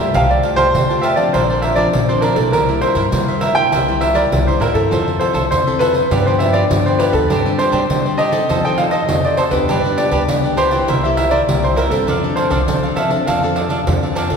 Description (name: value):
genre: samba and choro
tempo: 100 BPM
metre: 4/4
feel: straight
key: F major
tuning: A4 = 440 Hz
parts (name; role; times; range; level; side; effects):
- warm baby grand piano; melody; 0.0-13.8 s; A4 to G5; -17 LUFS; equal; none
- cavaquinho; accompaniment; 0.0-14.4 s; D4 to A5; -22 LUFS; right 2 dB; none
- nylon-string guitar; accompaniment; 0.0-14.4 s; G2 to A4; -22 LUFS; left 3 dB; none
- upright bass; bass; 0.0-14.4 s; Bb1 to G3; -22 LUFS; equal; none
- pandeiro; percussion; 0.1-14.4 s; none; -21 LUFS; right 1 dB; none
room: wet concert hall reverb, RT60 2.3 s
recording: recorded in a church or concert hall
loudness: -13 LUFS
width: side -6 dB against mid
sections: 0.0-14.4 A section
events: none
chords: 0.1 Fadd9/C; 1.3 Bbadd9; 2.5 C7; 4.9 Fmaj7; 6.1 G7; 7.3 Csus2/G; 8.5 F7; 9.7 G; 10.9 C7; 12.1 F6